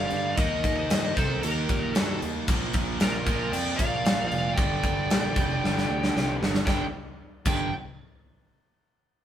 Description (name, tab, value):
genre	hard rock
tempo	114 BPM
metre	4/4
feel	straight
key	G minor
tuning	A4 = 440 Hz
part	high-gain lead guitar	melody	0.0-7.7 s	Bb4 to G5	-30 LUFS	equal	distortion
part	smooth overdriven lead guitar	second line	0.0-7.7 s	D4 to D5	-35 LUFS	right 5 dB	none
part	crunchy overdriven guitar	riff	0.0-7.7 s	G2 to Eb4	-34 LUFS	right 7 dB	none
part	distorted electric guitar	riff	0.0-7.7 s	G2 to Eb4	-34 LUFS	left 5 dB	distortion
part	fuzz picked electric bass	bass	0.0-7.7 s	F1 to Bb2	-32 LUFS	equal	overdrive
part	big rock drum kit	drums	0.1-7.6 s	crash cymbal, kick drum, snare drum	-27 LUFS	equal	none
room	light reverb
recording	band playing live in one room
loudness	-23 LUFS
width	side -10 dB against mid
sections	0.0-6.7 A section; 6.7-8.8 B section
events	drum fill 5.6-6.7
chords	0.4 Eb; 2.5 Bb; 4.6 Gm; 6.7 G5